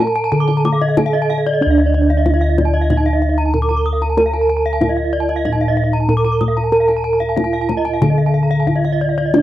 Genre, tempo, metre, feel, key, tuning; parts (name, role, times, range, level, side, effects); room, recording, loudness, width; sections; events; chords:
Balinese gamelan; 94 BPM; 4/4; straight; D pelog; A4 = 440 Hz
gamelan-type bronze metallophone; melody; 0.0-9.4 s; D4 to Bb4-40c; -20 LUFS; right 3 dB; slapback echo
gamelan-type bronze metallophone; arpeggios; 0.0-9.3 s; D5 to D6; -24 LUFS; right 8 dB
gamelan-type bossed gongs; bass; 0.0-9.4 s; D2 to Bb4-40c; -16 LUFS; left 1 dB
kendang; percussion; 0.0-9.4 s; -22 LUFS; left 3 dB
gamelan-type bronze metallophone; arpeggios; 0.1-9.4 s; D5 to Eb6; -22 LUFS; left 4 dB
light reverb; dry, close 1970s-style studio recording; -13 LUFS; side -13 dB against mid
0.0-1.6 A section; 1.6-9.4 B section